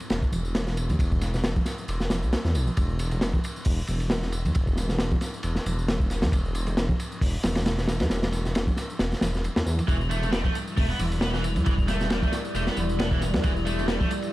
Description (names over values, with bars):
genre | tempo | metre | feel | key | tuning
breakbeat, breaks | 135 BPM | 4/4 | swing 55% on 16ths | E minor | A4 = 441 Hz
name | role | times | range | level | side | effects
crunchy breakbeat drum kit | drums | 0.0-14.3 s | hi-hat, kick drum, ride cymbal, snare drum | -26 LUFS | equal | none
tambourine | drums | 0.0-14.3 s | none | -42 LUFS | equal | dub echo
detuned saw bass | bass | 0.1-14.0 s | E1 to E2 | -27 LUFS | equal | tube saturation
congas | percussion | 0.3-14.1 s | none | -36 LUFS | right 1 dB | dub echo
deep dark ambient pad | sustained chords | 10.6-14.3 s | G3 to D5 | -33 LUFS | left 1 dB | chorus, built-in reverb, vintage 12-bit sampler grit, sidechain pumping
high-gain distorted guitar | riff | 9.9-14.1 s | E3 to B3 | -30 LUFS | right 1 dB | distortion, tube saturation, dub echo
room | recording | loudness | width
studio reverb | echo-heavy mix, vinyl crackle | -23 LUFS | side -17 dB against mid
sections
0.0-14.3 A section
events
none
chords
0.0 Em7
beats
0.11 0.55 | 0.99 1.44 1.88 2.33 | 2.77 3.22 3.66 4.11 | 4.55 5.00 5.44 5.88 | 6.33 6.77 7.22 7.66 | 8.11 8.55 8.99 9.44 | 9.88 10.33 10.77 11.22 | 11.66 12.11 12.55 12.99 | 13.44 13.88